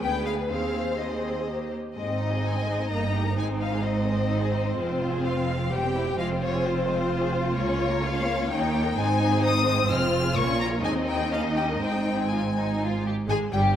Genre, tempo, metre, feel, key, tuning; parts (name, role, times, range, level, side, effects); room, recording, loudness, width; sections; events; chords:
quick classical-period movement for string orchestra; 128 BPM; 3/4; rubato; Ab major; A4 = 439 Hz
rich chamber violin section; melody; 0.0-13.6 s; C5 to F6; -31 LUFS; left 5 dB
rich studio violin section; second line; 0.0-13.8 s; G3 to Eb5; -30 LUFS; left 2 dB
warm chamber viola section; accompaniment; 0.0-13.8 s; G3 to Ab4; -29 LUFS; equal
clear chamber double bass section; bass; 0.0-13.8 s; E1 to Eb2; -30 LUFS; right 3 dB
rich studio cello section; bass; 0.0-13.8 s; Db2 to Bb2; -30 LUFS; right 2 dB
moderate scoring stage reverb, RT60 1.9 s; -23 LUFS; side -10 dB against mid
0.0-2.0 A section; 2.0-13.3 B section
0.0 Ddim7(no3); 0.5 Ab/Eb; 1.5 Eb; 2.0 Ab; 2.9 Eb/G; 3.4 Ab; 4.8 Fm; 5.7 C/E; 6.2 Fm; 7.6 Bbm/Db; 8.5 Eb7; 9.0 Ab; 9.9 Fm; 10.4 Bbm; 10.8 Ab/Eb; 11.3 Eb7; 11.8 Ab